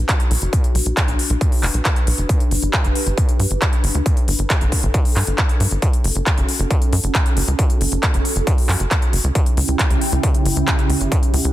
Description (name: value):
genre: uplifting trance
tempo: 136 BPM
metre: 4/4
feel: straight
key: B minor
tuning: A4 = 439 Hz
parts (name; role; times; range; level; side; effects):
- lush unison pad; sustained chords; 0.0-11.5 s; C#3 to G5; -26 LUFS; right 1 dB; chorus, phaser, sidechain pumping
- tight sequencer bass; bass; 0.0-11.5 s; F#1 to G2; -19 LUFS; equal; sidechain pumping
- big-room dance drum kit; drums; 0.1-11.5 s; handclaps, hi-hat; -23 LUFS; equal; overdrive, sidechain pumping on hats, small room ambience, sidechain pumping on cymbals
- electronic kick drum; drums; 0.1-11.2 s; none; -17 LUFS; equal; distortion, overdrive, small room ambience
room: little or no reverb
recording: dense, heavily limited modern master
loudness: -15 LUFS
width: side -14 dB against mid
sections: 0.0-11.5 A section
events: filter sweep on analog synth pad 0.0-11.5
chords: 0.0 Bm; 2.3 G; 5.8 F#m; 9.4 C#dim